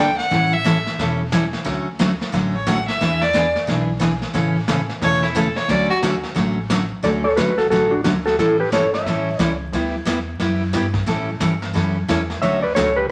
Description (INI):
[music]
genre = country, western swing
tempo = 178 BPM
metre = 4/4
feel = swing 62% on 8ths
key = D major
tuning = A4 = 441 Hz
[part]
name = rich fiddle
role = second line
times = 0.0-6.0 s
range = E4 to G5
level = -23 LUFS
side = equal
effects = none
[part]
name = picked steel-string acoustic guitar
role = accompaniment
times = 0.0-12.9 s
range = C#3 to A4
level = -23 LUFS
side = equal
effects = none
[part]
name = upright bass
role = bass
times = 0.0-13.1 s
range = E1 to A2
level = -30 LUFS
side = equal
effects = none
[part]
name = vintage brush drum kit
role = drums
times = 0.2-13.1 s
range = brushed snare drum, hi-hat, kick drum, snare drum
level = -29 LUFS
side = equal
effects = none
[part]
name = clean lap steel guitar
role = melody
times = 7.0-9.6, 12.4-13.1 s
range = D4 to E5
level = -20 LUFS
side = equal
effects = none
[sound]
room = wet studio reverb, RT60 0.9 s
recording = vinyl crackle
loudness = -20 LUFS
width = mono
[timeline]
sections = 0.0-7.0 A section; 7.0-13.1 B section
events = fiddle solo 0.0-7.0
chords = 0.3 A7; 1.7 Dmaj7; 3.0 E7; 4.3 A; 5.7 Dmaj7; 8.4 A7; 9.7 G6; 11.1 A7; 12.4 Dmaj7